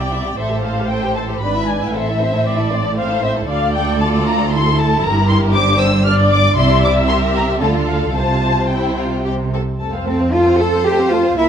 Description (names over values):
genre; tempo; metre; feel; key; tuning
quick classical-period movement for string orchestra; 116 BPM; 3/4; rubato; F major from 3.5 s; A4 = 440 Hz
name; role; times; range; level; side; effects
dark studio violin section; melody; 0.0-11.5 s; D5 to F6; -21 LUFS; left 3 dB; none
warm studio violin section; second line; 0.0-11.5 s; C4 to G5; -22 LUFS; left 1 dB; none
warm studio viola section; accompaniment; 0.0-11.5 s; A3 to E5; -23 LUFS; equal; none
bright studio double bass section; bass; 0.0-11.5 s; G1 to F2; -21 LUFS; right 2 dB; none
rich studio cello section; bass; 0.0-11.5 s; D2 to A4; -18 LUFS; right 1 dB; none
room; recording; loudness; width
moderate scoring stage reverb, RT60 1.9 s; none; -14 LUFS; side -8 dB against mid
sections
0.0-9.8 A section; 9.8-11.5 B section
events
none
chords
0.4 Am7; 1.4 E7/G#; 1.9 Am; 3.5 Dm; 4.5 D5; 5.0 Gm; 6.1 G5; 6.6 C7; 7.6 Dm; 8.2 Csus4; 9.8 F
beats
| 0.38 0.90 1.41 | 1.94 2.46 2.98 | 3.50 4.01 4.53 | 5.04 5.55 6.06 | 6.57 7.09 7.62 | 8.16 8.71 9.26 | 9.80 10.33 10.85 | 11.37